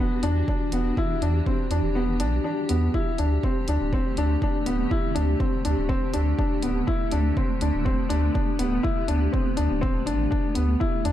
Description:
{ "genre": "piano and strings electronica", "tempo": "122 BPM", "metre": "4/4", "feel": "straight", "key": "unclear", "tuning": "A4 = 440 Hz", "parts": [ { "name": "granular cloud pad", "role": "sustained chords", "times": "0.0-11.1 s", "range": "D3 to G4", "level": "-30 LUFS", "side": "right 1 dB", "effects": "built-in reverb, sidechain pumping" }, { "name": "dark baby grand piano", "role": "riff", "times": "0.0-11.1 s", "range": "B3 to E4", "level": "-26 LUFS", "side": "left 2 dB", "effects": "tape echo" }, { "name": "warm sub bass", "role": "bass", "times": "0.0-11.1 s", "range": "D1 to E2", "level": "-24 LUFS", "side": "equal", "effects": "sidechain pumping" }, { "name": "electronic hi-hat", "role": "drums", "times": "0.2-11.1 s", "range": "none", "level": "-37 LUFS", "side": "equal", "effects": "studio reverb" }, { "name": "electronic kick drum", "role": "drums", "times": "0.5-10.9 s", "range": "none", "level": "-27 LUFS", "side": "equal", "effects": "studio reverb" } ], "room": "light reverb", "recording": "dark, warm production", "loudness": "-22 LUFS", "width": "side -12 dB against mid", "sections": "0.0-11.1 A section", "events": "kick drops out 2.0-2.9", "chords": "0.0 Em9; 2.9 D7sus4" }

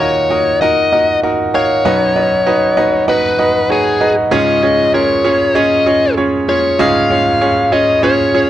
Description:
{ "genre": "pop", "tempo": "97 BPM", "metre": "4/4", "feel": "straight", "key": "unclear", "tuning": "A4 = 441 Hz", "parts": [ { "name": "biting lead guitar", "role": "melody", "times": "0.0-8.5 s", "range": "Ab4 to F5", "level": "-13 LUFS", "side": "left 2 dB", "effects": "overdrive, slapback echo" }, { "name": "bright baby grand piano", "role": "accompaniment", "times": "0.0-8.5 s", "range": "B1 to F5", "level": "-13 LUFS", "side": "right 2 dB", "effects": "none" } ], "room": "moderate booth ambience, RT60 0.2 s", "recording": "dry, close 1970s-style studio recording", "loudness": "-10 LUFS", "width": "side -12 dB against mid", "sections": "0.0-8.5 A section", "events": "none", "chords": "0.0 Ebm; 1.8 B; 4.3 Db" }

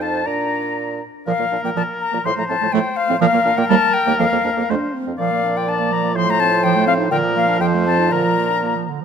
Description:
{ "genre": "quick classical-period movement for wind quintet", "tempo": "122 BPM", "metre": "2/4", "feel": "rubato", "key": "Bb major", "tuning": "A4 = 438 Hz", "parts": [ { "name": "concert flute", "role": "melody", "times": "0.0-8.9 s", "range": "F5 to C6", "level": "-20 LUFS", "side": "left 6 dB", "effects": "none" }, { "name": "warm oboe", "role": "second line", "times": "0.0-8.9 s", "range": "Bb4 to Bb5", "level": "-24 LUFS", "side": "left 2 dB", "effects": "none" }, { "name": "mellow French horn", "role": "accompaniment", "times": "0.0-8.8 s", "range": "F3 to Eb4", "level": "-25 LUFS", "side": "right 3 dB", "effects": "none" }, { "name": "warm clarinet", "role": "accompaniment", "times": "0.0-9.0 s", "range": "D3 to D5", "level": "-23 LUFS", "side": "right 11 dB", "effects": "none" }, { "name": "mellow bassoon", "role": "bass", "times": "0.0-8.9 s", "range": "Eb2 to Bb2", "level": "-24 LUFS", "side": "right 3 dB", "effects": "none" } ], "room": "moderate concert hall reverb, RT60 2.3 s", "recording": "close, detailed microphones", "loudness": "-16 LUFS", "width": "side -7 dB against mid", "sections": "0.0-1.3 A section; 1.3-9.0 B section", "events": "none", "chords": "0.3 Bb; 1.3 Bb5; 2.3 F/A; 3.2 Bb5; 3.7 Eb; 4.2 Bb5/F; 4.7 N.C.; 5.2 Bb; 6.2 F/A; 6.6 F7/A; 7.1 Bb; 7.6 F7; 8.1 Bb" }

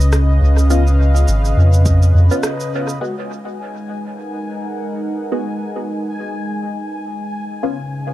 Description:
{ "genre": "ambient dub", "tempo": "104 BPM", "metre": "4/4", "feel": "swing 58% on 16ths", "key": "G# dorian", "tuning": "A4 = 440 Hz", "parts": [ { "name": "warm analog pad", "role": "sustained chords", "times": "0.0-8.1 s", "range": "C#3 to F#5", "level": "-23 LUFS", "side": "equal", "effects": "chorus" }, { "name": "soft dub sub bass", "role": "bass", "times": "0.0-2.3 s", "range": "G#1 to E#2", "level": "-11 LUFS", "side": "equal", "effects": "none" }, { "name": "electronic cabasa and rim click", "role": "drums", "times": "0.0-3.0 s", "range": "none", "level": "-27 LUFS", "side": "right 1 dB", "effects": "low-pass filter on perc, low-pass filter on snare, low-pass filter on room, dub echo" }, { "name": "bubbling stepped-filter texture", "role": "texture", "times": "0.0-8.1 s", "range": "D#5 to G#5", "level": "-31 LUFS", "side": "left 1 dB", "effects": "chorus, built-in reverb" }, { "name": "filtered dub chord stab", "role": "stabs", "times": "0.7-7.8 s", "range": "G#3 to F#4", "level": "-25 LUFS", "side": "left 1 dB", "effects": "phaser, analog chorus, dub echo" }, { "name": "electronic kick drum", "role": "drums", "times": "1.9-2.0 s", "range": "none", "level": "-21 LUFS", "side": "equal", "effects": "overdrive" } ], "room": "little or no reverb", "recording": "echo-heavy mix", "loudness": "-15 LUFS", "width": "side -15 dB against mid", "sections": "0.0-3.0 A section; 3.0-8.1 B section", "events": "band accent 2.4; filter sweep on analog synth pad 3.0-8.1", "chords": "0.0 C#7; 3.0 G#m7; 7.6 C#7" }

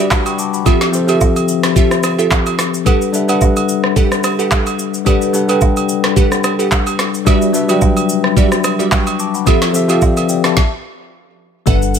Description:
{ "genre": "amapiano", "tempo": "109 BPM", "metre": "4/4", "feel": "swing 55% on 16ths", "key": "unclear", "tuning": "A4 = 439 Hz", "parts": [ { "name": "bell-like tine electric piano", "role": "accompaniment", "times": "0.0-12.0 s", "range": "F3 to D6", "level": "-16 LUFS", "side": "moving between left 12 dB and left 2 dB", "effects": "auto-pan" }, { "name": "glassy wavetable pluck", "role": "stabs", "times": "0.0-12.0 s", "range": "G3 to F#5", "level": "-18 LUFS", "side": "right 3 dB", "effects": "chorus, digital delay" }, { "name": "smooth R&B drum kit", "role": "drums", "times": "0.1-12.0 s", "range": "handclaps, kick drum, rim click, shaker, snare drum", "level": "-15 LUFS", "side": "right 1 dB", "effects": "none" }, { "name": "woodblock and agogo bells", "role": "percussion", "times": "0.1-10.3 s", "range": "none", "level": "-23 LUFS", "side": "right 10 dB", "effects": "none" }, { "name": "woody log drum bass", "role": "bass", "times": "11.7-12.0 s", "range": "G1", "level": "-15 LUFS", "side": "right 1 dB", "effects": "none" } ], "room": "light reverb", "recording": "none", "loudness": "-12 LUFS", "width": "side -7 dB against mid", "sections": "0.0-11.7 A section", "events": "stop 10.6-11.7", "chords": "0.0 Em9/G; 0.7 Fmaj9; 2.9 Gmaj9; 7.3 Em9; 9.5 Fmaj9" }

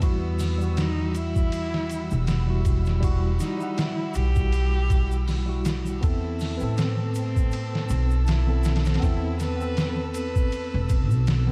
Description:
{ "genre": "trip hop", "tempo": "80 BPM", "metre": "4/4", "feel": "swing 56% on 16ths", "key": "E minor", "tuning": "A4 = 440 Hz", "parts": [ { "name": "dark cello", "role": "melody", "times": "0.0-11.2 s", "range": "B3 to B4", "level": "-36 LUFS", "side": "equal", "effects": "tape echo" }, { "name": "tine electric piano", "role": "accompaniment", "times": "0.0-11.5 s", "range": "E3 to F#5", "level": "-34 LUFS", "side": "equal", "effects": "medium tremolo, harmonic tremolo" }, { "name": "muted studio violin section", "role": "sustained chords", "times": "0.0-11.5 s", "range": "G3 to E6", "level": "-43 LUFS", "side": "equal", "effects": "none" }, { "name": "upright bass", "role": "bass", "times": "0.0-11.5 s", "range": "E1 to A2", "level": "-27 LUFS", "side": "equal", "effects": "tube saturation" }, { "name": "trip hop sampler-style drum kit", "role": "drums", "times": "0.0-11.5 s", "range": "hi-hat, kick drum, ride cymbal, snare drum", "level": "-29 LUFS", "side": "equal", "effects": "studio reverb" }, { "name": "egg shaker", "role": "percussion", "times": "0.0-11.4 s", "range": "none", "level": "-49 LUFS", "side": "equal", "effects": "none" } ], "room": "small room ambience", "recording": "dark, warm production, vinyl crackle", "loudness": "-24 LUFS", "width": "mono", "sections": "0.0-11.5 A section", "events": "none", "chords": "0.0 Emadd9; 6.0 Amadd9" }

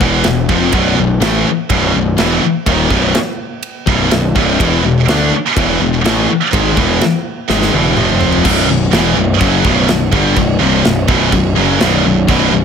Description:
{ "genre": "heavy metal", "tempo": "125 BPM", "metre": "4/4", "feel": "straight", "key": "unclear", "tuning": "A4 = 441 Hz", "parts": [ { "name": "heavy high-gain guitar", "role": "riff", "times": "0.0-12.6 s", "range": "B1 to D4", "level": "-16 LUFS", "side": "right 14 dB", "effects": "distortion" }, { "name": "scooped high-gain guitar", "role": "riff", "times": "0.0-12.6 s", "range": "B1 to D4", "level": "-15 LUFS", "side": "left 9 dB", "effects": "distortion" }, { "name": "fuzz picked electric bass", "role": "bass", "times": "0.0-12.6 s", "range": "B0 to D2", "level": "-16 LUFS", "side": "right 1 dB", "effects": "overdrive" }, { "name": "tight metal drum kit", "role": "drums", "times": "0.0-12.4 s", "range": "crash cymbal, kick drum, ride cymbal, snare drum, toms", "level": "-18 LUFS", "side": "right 1 dB", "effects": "none" } ], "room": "light reverb", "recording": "none", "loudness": "-10 LUFS", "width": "side -7 dB against mid", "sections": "0.0-8.4 A section; 8.4-12.6 B section", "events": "drum fill 7.5-8.4", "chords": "0.0 E5; 0.7 B; 4.6 E5; 8.0 F5; 8.4 B5" }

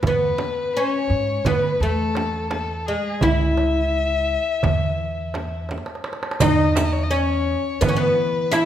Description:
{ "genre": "Turkish makam ensemble", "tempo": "170 BPM (eighths)", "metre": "9/8", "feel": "straight", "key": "E makam rast", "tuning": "A4 = 439 Hz", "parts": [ { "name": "warm violin", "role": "second line", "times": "0.0-8.7 s", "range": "G#4 to E5", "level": "-25 LUFS", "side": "left 4 dB", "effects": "none" }, { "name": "upright bass", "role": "bass", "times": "0.0-8.7 s", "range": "C#2 to E3", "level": "-25 LUFS", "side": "equal", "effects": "none" }, { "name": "darbuka", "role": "percussion", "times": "0.0-8.7 s", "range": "none", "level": "-26 LUFS", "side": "right 6 dB", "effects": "none" }, { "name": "frame drum", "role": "percussion", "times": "0.0-8.7 s", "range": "none", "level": "-27 LUFS", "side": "right 3 dB", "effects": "none" }, { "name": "oud", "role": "melody", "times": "0.1-8.7 s", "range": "G#3 to E4", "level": "-22 LUFS", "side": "left 1 dB", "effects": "none" }, { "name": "riq", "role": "percussion", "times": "6.4-8.7 s", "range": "none", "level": "-34 LUFS", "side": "right 7 dB", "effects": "none" } ], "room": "wet recital hall reverb, RT60 1.4 s", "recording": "none", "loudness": "-19 LUFS", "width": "side -10 dB against mid", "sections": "0.0-6.4 A section; 6.4-8.7 B section", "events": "drum fill 5.7-6.4", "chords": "none" }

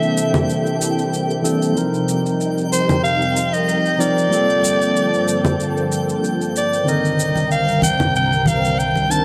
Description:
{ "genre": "sunset chillout", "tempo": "94 BPM", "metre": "4/4", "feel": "swing 54% on 16ths", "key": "C dorian", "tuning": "A4 = 436 Hz", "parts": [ { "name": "raspy soprano saxophone", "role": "melody", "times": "0.0-9.2 s", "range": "C5 to A5", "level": "-22 LUFS", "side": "equal", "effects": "digital delay" }, { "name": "tine electric piano", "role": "accompaniment", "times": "0.0-9.2 s", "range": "D3 to Bb4", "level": "-23 LUFS", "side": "equal", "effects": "delay" }, { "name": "soft string machine", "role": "sustained chords", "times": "0.0-9.2 s", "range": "C2 to Bb4", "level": "-25 LUFS", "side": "equal", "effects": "phaser, ensemble chorus" }, { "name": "shaker and congas", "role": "drums", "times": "0.0-9.2 s", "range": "none", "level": "-26 LUFS", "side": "equal", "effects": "none" }, { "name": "twinkling granular texture", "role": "texture", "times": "0.0-9.2 s", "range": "G5", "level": "-33 LUFS", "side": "equal", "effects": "built-in reverb" }, { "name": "congas", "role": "percussion", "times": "7.4-9.1 s", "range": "none", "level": "-24 LUFS", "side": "equal", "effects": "none" } ], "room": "moderate plate reverb, RT60 2.4 s", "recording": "dark, warm production", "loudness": "-18 LUFS", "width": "mono", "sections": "0.0-9.2 A section", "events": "none", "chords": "0.0 C13; 1.8 F7sus4; 4.3 Gm11; 6.9 Cm9" }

